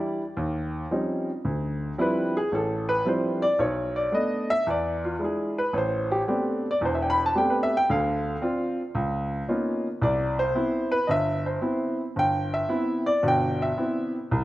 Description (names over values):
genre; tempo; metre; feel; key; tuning
solo jazz; 112 BPM; 4/4; swing 67% on 8ths; C major; A4 = 440 Hz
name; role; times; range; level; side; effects
warm grand piano; solo; 0.0-14.4 s; E1 to B5; -23 LUFS; equal; none
room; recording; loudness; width
moderate lush hall reverb, RT60 2.2 s; rough home demo mix; -23 LUFS; side -16 dB against mid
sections
0.0-14.3 A section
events
grand piano solo 0.0-14.3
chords
0.4 Eb13; 1.4 Dm11; 3.6 Bm7; 4.7 E7; 5.7 Am11; 7.9 Dm7; 8.9 Db13; 10.0 Cmaj7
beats
0.37 0.91 | 1.45 1.98 2.52 3.06 | 3.59 4.13 4.66 5.20 | 5.74 6.27 6.81 7.34 | 7.88 8.41 8.95 9.48 | 10.02 10.56 11.09 11.63 | 12.16 12.70 13.23 13.77 | 14.31